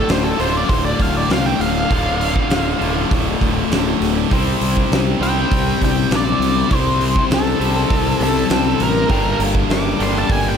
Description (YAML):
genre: classic rock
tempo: 100 BPM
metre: 4/4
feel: straight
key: D minor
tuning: A4 = 440 Hz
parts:
  - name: octave-fuzz lead guitar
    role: melody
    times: 0.0-10.6 s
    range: A4 to D6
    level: -22 LUFS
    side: equal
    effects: distortion, slapback echo
  - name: biting overdriven guitar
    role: riff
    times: 0.0-10.6 s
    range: D2 to C5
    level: -21 LUFS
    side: left 12 dB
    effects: none
  - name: tight distorted guitar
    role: riff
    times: 0.0-10.6 s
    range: D2 to C4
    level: -24 LUFS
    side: right 14 dB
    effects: distortion
  - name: fuzz fingered electric bass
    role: bass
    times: 0.0-10.5 s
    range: D1 to C2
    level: -22 LUFS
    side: right 1 dB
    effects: overdrive
  - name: big rock drum kit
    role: drums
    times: 0.1-10.4 s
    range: hi-hat, kick drum, snare drum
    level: -20 LUFS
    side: right 1 dB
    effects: none
  - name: warm upright piano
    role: accompaniment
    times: 9.1-10.5 s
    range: A4 to G5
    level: -27 LUFS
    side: right 7 dB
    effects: none
room: light reverb, studio reverb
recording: none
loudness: -15 LUFS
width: side -7 dB against mid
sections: 0.0-10.6 A section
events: lead electric guitar solo 0.0-10.6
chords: 0.0 Dm; 4.3 C; 9.1 Gmadd9